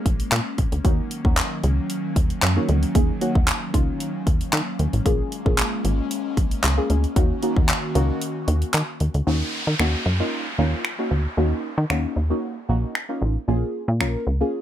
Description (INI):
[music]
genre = dance-pop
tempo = 114 BPM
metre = 4/4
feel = straight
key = Eb minor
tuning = A4 = 440 Hz
[part]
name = deep mellow chord stab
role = accompaniment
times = 0.0-14.6 s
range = Bb3 to Bb4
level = -26 LUFS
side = right 1 dB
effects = chorus, phaser, sidechain pumping
[part]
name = airy breathy pad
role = sustained chords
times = 0.0-9.2 s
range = Eb3 to Gb4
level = -29 LUFS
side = left 1 dB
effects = chorus, sidechain pumping
[part]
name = plucky analog bass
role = bass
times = 0.1-14.4 s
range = Ab1 to Eb3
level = -22 LUFS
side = equal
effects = sidechain pumping
[part]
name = pop drum kit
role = drums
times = 0.1-14.1 s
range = finger snaps, handclaps, hi-hat, kick drum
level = -22 LUFS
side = equal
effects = none
[part]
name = downlifter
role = sound effects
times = 9.3-13.5 s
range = none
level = -31 LUFS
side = equal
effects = none
[sound]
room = little or no reverb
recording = none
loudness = -20 LUFS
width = side -11 dB against mid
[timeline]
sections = 0.0-9.3 A section; 9.3-14.6 B section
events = break 8.2-9.3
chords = 0.0 Bbm7; 0.8 Ebm7; 5.1 Bbm7; 7.2 Ebm7; 13.5 Bbm7